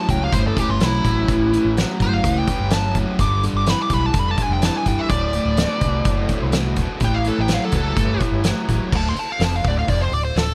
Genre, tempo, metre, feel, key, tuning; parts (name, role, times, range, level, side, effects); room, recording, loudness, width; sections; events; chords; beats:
blues rock power trio and southern rock; 126 BPM; 4/4; straight; A4 = 440 Hz
dark smooth lead guitar; melody; 0.0-10.5 s; E4 to D6; -26 LUFS; equal; wah, overdrive, plate reverb, analog delay
bright tonewheel organ; sustained chords; 0.0-10.5 s; C#4 to C#5; -37 LUFS; equal
cranked stack guitar; riff; 0.0-10.5 s; D2 to F#3; -26 LUFS; equal; overdrive
vintage muted fingered electric bass; bass; 0.1-10.5 s; D1 to C#2; -24 LUFS; equal
oversized low-tuned drum kit; drums; 0.1-10.5 s; crash cymbal, hi-hat, kick drum, snare drum; -25 LUFS; equal
light reverb; -19 LUFS; mono
0.0-8.9 A section; 8.9-10.5 B section
lead electric guitar solo 8.9-10.5
0.0 A7; 3.2 G7; 5.1 D7; 7.0 A7; 8.9 D7
0.33 0.81 | 1.28 1.76 2.24 2.71 | 3.19 3.67 4.15 4.63 | 5.11 5.58 6.06 6.54 | 7.02 7.50 7.98 8.45 | 8.93 9.41 9.89 10.37